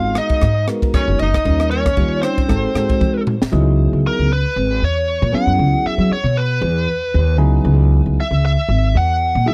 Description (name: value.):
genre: electric jazz fusion.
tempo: 116 BPM.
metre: 4/4.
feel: swing 55% on 16ths.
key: C# dorian from 3.5 s.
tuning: A4 = 443 Hz.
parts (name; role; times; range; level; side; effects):
biting lead guitar; melody; 0.0-9.5 s; A#4 to F#5; -23 LUFS; equal; overdrive.
clear tenor saxophone; second line; 0.0-3.2 s; B#3 to E#4; -28 LUFS; equal; none.
bell-like tine electric piano; accompaniment; 0.0-9.5 s; F#3 to C#5; -23 LUFS; equal; phaser.
upright bass; bass; 0.0-9.5 s; F#1 to F#3; -19 LUFS; equal; none.
crisp fusion drum kit; drums; 0.2-3.5 s; kick drum, ride cymbal, rim click, snare drum, toms; -22 LUFS; equal; none.
room: small room ambience.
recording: dry, close 1970s-style studio recording.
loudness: -16 LUFS.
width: mono.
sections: 0.0-3.5 A section; 3.5-9.5 B section.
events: drum fill 3.0-3.5.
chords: 0.0 G#m7; 1.5 D#9; 2.5 G#7b9; 3.5 C#m11; 5.3 F#9sus4; 7.4 C#m11.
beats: 0.43 0.94 | 1.46 1.98 2.50 3.01 | 3.53 4.04 4.56 5.08 | 5.59 6.11 6.63 7.14 | 7.66 8.18 8.69 9.21.